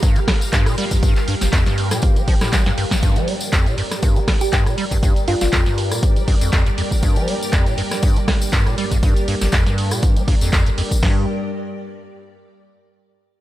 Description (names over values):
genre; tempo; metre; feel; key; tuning
acid house; 120 BPM; 4/4; swing 54% on 16ths; G minor; A4 = 440 Hz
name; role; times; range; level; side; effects
string machine, full ensemble; sustained chords; 0.0-11.3 s; G3 to F5; -26 LUFS; equal; phaser, ensemble chorus, sidechain pumping
acid bass, square; riff; 0.0-11.3 s; G1 to G3; -22 LUFS; equal; tube saturation, analog chorus, sidechain pumping, analog delay
punchy analog drum machine; drums; 0.0-11.2 s; hi-hat, kick drum, snare drum; -17 LUFS; equal; none
punchy analog drum machine; drums; 0.0-11.0 s; handclaps, hi-hat, rim click, snare drum; -24 LUFS; equal; none
tambourine; percussion; 0.0-11.0 s; none; -30 LUFS; left 2 dB; none
thumb-piano-like synth pluck; melody; 4.4-5.5 s; F4 to G4; -24 LUFS; equal; phaser, lush chorus, tape echo
room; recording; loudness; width
light reverb; none; -15 LUFS; side -14 dB against mid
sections
0.0-3.0 A section; 3.0-11.0 B section; 11.0-13.0 C section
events
drop 0.0-3.0; drum fill 2.5-3.0; band accent 2.9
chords
0.0 Gm